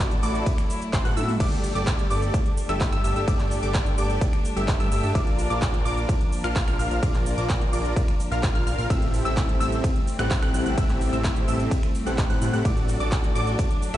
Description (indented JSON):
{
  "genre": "EDM, festival progressive house",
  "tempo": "128 BPM",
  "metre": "4/4",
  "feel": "straight",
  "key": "unclear",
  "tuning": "A4 = 440 Hz",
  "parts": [
    { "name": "dark chamber string section", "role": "sustained chords", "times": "0.0-14.0 s", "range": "F3 to E4", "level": "-33 LUFS", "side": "left 1 dB", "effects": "sidechain pumping" },
    { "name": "wide unison pluck", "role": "arpeggios", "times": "0.0-14.0 s", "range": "C6 to F#6", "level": "-33 LUFS", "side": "equal", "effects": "sidechain pumping, digital delay" },
    { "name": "dense compressed supersaw", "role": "riff", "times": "0.0-14.0 s", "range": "C4 to F#5", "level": "-29 LUFS", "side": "equal", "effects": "sidechain pumping, digital delay" },
    { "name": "fat analog bass", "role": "bass", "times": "0.0-14.0 s", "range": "G1 to A2", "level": "-27 LUFS", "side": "equal", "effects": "sidechain pumping" },
    { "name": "big-room dance drum kit", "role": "drums", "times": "0.0-14.0 s", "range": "cabasa, crash cymbal, finger snaps, handclaps, hi-hat, ride cymbal, toms", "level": "-33 LUFS", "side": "right 1 dB", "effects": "overdrive" },
    { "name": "electronic kick drum", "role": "drums", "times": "0.5-13.7 s", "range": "none", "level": "-24 LUFS", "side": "equal", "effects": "overdrive" }
  ],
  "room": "digital ambience",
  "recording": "played on a big sound system in a bare room, stone room reverb, nothing above 10.3 kHz",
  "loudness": "-21 LUFS",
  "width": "side -13 dB against mid",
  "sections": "0.0-14.0 A section",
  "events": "drum fill 1.1-1.4",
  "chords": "0.0 D/A; 1.4 Gsus2; 5.2 Bb; 8.9 Am7; 12.7 D/A",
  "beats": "0.46 0.93 | 1.40 1.87 2.34 2.81 | 3.28 3.75 4.21 4.68 | 5.15 5.62 6.09 6.56 | 7.03 7.50 7.96 8.43 | 8.90 9.37 9.84 10.31 | 10.78 11.24 11.71 12.18 | 12.65 13.12 13.59"
}